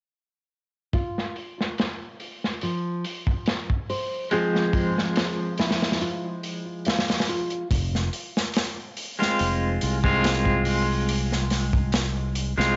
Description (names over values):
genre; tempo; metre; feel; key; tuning
trip hop; 71 BPM; 4/4; straight; F minor; A4 = 439 Hz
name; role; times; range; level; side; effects
nylon-string guitar; arpeggios; 0.9-7.7 s; F3 to F5; -34 LUFS; equal; low-pass filter, cassette tape, tape echo
crunchy breakbeat drum kit; drums; 0.9-12.8 s; hi-hat, kick drum, snare drum; -29 LUFS; equal; low-pass filter on kick, cassette tape, low-pass filter on hats, low-pass filter on snare, low-pass filter on room
clean electric guitar; accompaniment; 4.3-12.8 s; F3 to F4; -28 LUFS; equal; tremolo, cassette tape, tape echo
modern bright fingered electric bass; bass; 7.7-12.8 s; F1 to C2; -28 LUFS; equal; none
room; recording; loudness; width
light reverb, small room ambience; home recording on cassette, nothing above 7.8 kHz; -25 LUFS; mono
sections
0.9-7.7 A section; 7.7-12.8 B section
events
filter sweep on nylon-string guitar 0.9-7.7; break 6.0-7.7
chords
0.9 Fm